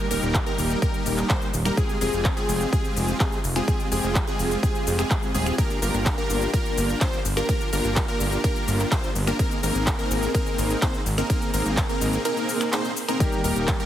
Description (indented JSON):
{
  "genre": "EDM, festival progressive house",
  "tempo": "126 BPM",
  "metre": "4/4",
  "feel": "straight",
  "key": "unclear",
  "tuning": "A4 = 441 Hz",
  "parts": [
    { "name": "plucky unison lead", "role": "arpeggios", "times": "0.0-13.9 s", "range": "Ab4 to C5", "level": "-30 LUFS", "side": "equal", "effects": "phaser, sidechain pumping, digital delay" },
    { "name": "dense compressed supersaw", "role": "riff", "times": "0.0-13.9 s", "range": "G3 to C5", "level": "-27 LUFS", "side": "equal", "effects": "sidechain pumping, digital delay" },
    { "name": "downlifter", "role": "sound effects", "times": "0.0-1.8 s", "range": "none", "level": "-45 LUFS", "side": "equal", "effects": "none" },
    { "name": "fat analog bass", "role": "bass", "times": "0.1-13.7 s", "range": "Eb1 to Ab1", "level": "-26 LUFS", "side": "equal", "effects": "tube saturation, sidechain pumping" },
    { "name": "big-room dance drum kit", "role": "drums", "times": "0.1-13.9 s", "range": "finger snaps, handclaps, hi-hat, ride cymbal, shaker", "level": "-30 LUFS", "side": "equal", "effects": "overdrive" },
    { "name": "electronic kick drum", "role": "drums", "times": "0.3-13.8 s", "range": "none", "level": "-24 LUFS", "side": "equal", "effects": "overdrive" },
    { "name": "warm grand piano", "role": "accompaniment", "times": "13.2-13.9 s", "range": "Eb3 to G4", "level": "-28 LUFS", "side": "left 3 dB", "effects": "sidechain pumping" }
  ],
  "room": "light reverb",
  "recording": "heavily compressed radio sound, multiband compression",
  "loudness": "-21 LUFS",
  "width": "side -11 dB against mid",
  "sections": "0.0-13.9 A section",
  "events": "none",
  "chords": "0.0 Eb; 1.8 Fmadd9; 5.6 Gm7; 9.4 Abadd9; 13.2 Eb"
}